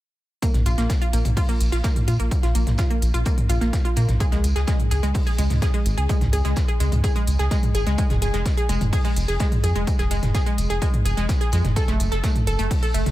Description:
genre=melodic techno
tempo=127 BPM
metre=4/4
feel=straight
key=Bb minor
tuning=A4 = 437 Hz
part: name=wide unison pluck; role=arpeggios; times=0.4-13.0 s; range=Ab3 to A4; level=-26 LUFS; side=equal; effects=sidechain pumping, diffuse ambient delay
part: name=cloth-damped thuddy drum kit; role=drums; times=0.4-13.1 s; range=hi-hat, snare drum, tambourine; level=-38 LUFS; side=left 1 dB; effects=sidechain pumping on hats, high-pass filter on hats, studio reverb, high-pass filter on snare, sidechain pumping on perc, high-pass filter on perc, high-pass filter on room
part: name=deep house drum kit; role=drums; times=0.4-13.1 s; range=hi-hat, toms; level=-28 LUFS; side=right 1 dB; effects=studio reverb
part: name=electronic kick drum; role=drums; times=0.4-12.8 s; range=none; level=-22 LUFS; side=equal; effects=studio reverb
part: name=round analog bass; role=bass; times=0.5-13.1 s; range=F1 to Bb2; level=-21 LUFS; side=equal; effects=sidechain pumping
room=light reverb, small room ambience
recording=none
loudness=-19 LUFS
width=side -15 dB against mid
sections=0.4-13.1 A section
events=none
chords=0.4 Bb5; 4.2 Db5; 8.0 Fm; 11.8 Gbm

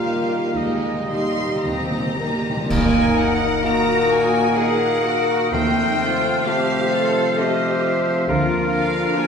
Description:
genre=classical, slow romantic movement for symphony orchestra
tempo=53-70 BPM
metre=3/4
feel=rubato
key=unclear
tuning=A4 = 439 Hz
part: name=rich studio violin section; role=melody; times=0.0-9.3 s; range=Eb5 to C6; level=-26 LUFS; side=left 3 dB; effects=none
part: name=clear chamber violin section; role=second line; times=0.0-9.3 s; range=Eb4 to Eb5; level=-32 LUFS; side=left 1 dB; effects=none
part: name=clear oboe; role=second line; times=0.0-9.3 s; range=Bb4 to F5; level=-27 LUFS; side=right 1 dB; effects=none
part: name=mellow clarinet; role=second line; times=0.0-9.3 s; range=C4 to F4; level=-30 LUFS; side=equal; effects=none
part: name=mellow bassoon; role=accompaniment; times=0.0-9.3 s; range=A3 to Bb3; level=-27 LUFS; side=right 1 dB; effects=none
part: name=rich studio viola section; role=accompaniment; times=0.0-9.3 s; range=G3 to F4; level=-28 LUFS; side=right 2 dB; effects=none
part: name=mellow French horn section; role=sustained chords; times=0.0-9.3 s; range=G3 to Bb4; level=-26 LUFS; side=left 3 dB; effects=none
part: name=concert harp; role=arpeggios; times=0.0-9.3 s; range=D3 to Bb5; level=-26 LUFS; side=left 3 dB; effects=none
part: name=rich chamber double bass section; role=bass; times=0.0-9.0 s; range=D2 to Eb2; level=-28 LUFS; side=right 3 dB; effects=none
part: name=rich symphonic cello section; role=bass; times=0.0-9.3 s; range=Eb3 to A4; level=-27 LUFS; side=right 1 dB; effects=none
part: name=timpani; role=percussion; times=0.0-6.9 s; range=Eb3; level=-26 LUFS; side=right 2 dB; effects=none
part: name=mellow hollow concert flute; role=second line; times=2.7-9.3 s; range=Eb6 to F6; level=-30 LUFS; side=left 2 dB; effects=none
part: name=mellow trombone section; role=sustained chords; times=2.7-9.3 s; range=Bb2 to F3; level=-29 LUFS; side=right 2 dB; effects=none
part: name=clash cymbals and concert bass drum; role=percussion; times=2.7-4.5 s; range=none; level=-28 LUFS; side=equal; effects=none
room=wet recital hall reverb, RT60 1.4 s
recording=recorded in a church or concert hall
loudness=-17 LUFS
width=side -6 dB against mid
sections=0.0-2.7 A section; 2.7-9.3 B section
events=timpani fill 0.0-2.7; band accent 2.7-3.7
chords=0.0 Eb; 2.7 Ebm; 5.5 F7/Eb; 8.3 Bb/D

